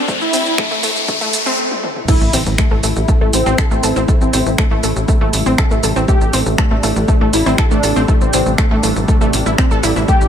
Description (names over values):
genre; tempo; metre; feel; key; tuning
melodic techno; 120 BPM; 4/4; straight; unclear; A4 = 437 Hz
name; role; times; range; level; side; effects
lush unison pad; sustained chords; 0.0-10.3 s; C3 to E4; -23 LUFS; left 1 dB; chorus, phaser, sidechain pumping
bowed-like drone; drone; 0.0-1.6 s; A2 to A3; -37 LUFS; equal; none
riser, swell and impact; sound effects; 0.0-4.1 s; none; -20 LUFS; left 2 dB; none
wide unison pluck; arpeggios; 0.1-10.2 s; A3 to A5; -20 LUFS; equal; sidechain pumping, ping-pong delay
electronic kick drum; drums; 0.1-10.2 s; none; -14 LUFS; equal; none
punchy analog drum machine; drums; 0.1-10.3 s; crash cymbal, finger snaps, hi-hat, shaker, toms; -21 LUFS; right 1 dB; none
wide unison lead; melody; 0.2-10.3 s; C4 to G4; -22 LUFS; equal; ensemble chorus, sidechain pumping, ping-pong delay
tight sequencer bass; bass; 2.2-10.3 s; A1; -18 LUFS; equal; sidechain pumping
room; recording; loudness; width
light reverb; high-pass filter; -12 LUFS; side -9 dB against mid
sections
0.0-2.1 A section; 2.1-10.3 B section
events
build-up 0.0-2.1; riser 0.0-1.6; filter sweep on synth arpeggio sound 0.0-2.1; swell 1.1-2.1; stop 1.6-2.1; drum fill 1.7-2.1; drop 2.1-10.3; impact 2.1-4.1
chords
0.0 Cadd9/A